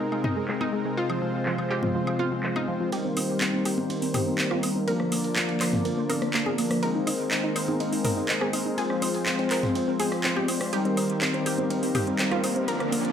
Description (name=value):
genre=progressive house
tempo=123 BPM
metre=4/4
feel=straight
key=C minor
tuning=A4 = 440 Hz
part: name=warm analog pad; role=sustained chords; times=0.0-13.1 s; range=C3 to D5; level=-32 LUFS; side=equal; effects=chorus
part: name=analog pluck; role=arpeggios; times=0.0-13.0 s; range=F3 to C5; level=-30 LUFS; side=right 1 dB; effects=chorus, dub echo
part: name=soft supersaw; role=stabs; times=0.0-13.1 s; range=F3 to D5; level=-28 LUFS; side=left 1 dB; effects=low-pass filter, dub echo
part: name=electronic woodblock, toms and congas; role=percussion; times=0.1-13.0 s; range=none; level=-32 LUFS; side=left 2 dB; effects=none
part: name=house drum kit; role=drums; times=0.5-13.1 s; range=handclaps, hi-hat, rim click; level=-30 LUFS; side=right 1 dB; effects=overdrive, low-pass filter on snare, low-pass filter on hats, low-pass filter on room
part: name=breakbeat sampler-style drum kit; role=drums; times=2.9-13.1 s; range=hi-hat, ride cymbal, snare drum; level=-41 LUFS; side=right 4 dB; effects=high-pass filter on cymbals, high-pass filter on snare, high-pass filter on hats
part: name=riser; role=sound effects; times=11.9-13.1 s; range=none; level=-35 LUFS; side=right 3 dB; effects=none
room=moderate digital room reverb, RT60 0.9 s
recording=none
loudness=-23 LUFS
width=side -8 dB against mid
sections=0.0-2.9 A section; 2.9-13.1 B section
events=build-up 2.9-13.1; filter sweep on synth pluck 2.9-13.1; filter sweep on supersaw synth 2.9-13.1; riser 11.9-13.1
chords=0.0 Abadd9; 1.0 Fm; 2.9 Cm7; 4.9 Bb; 6.8 Abadd9; 8.8 Fm; 10.7 Cm7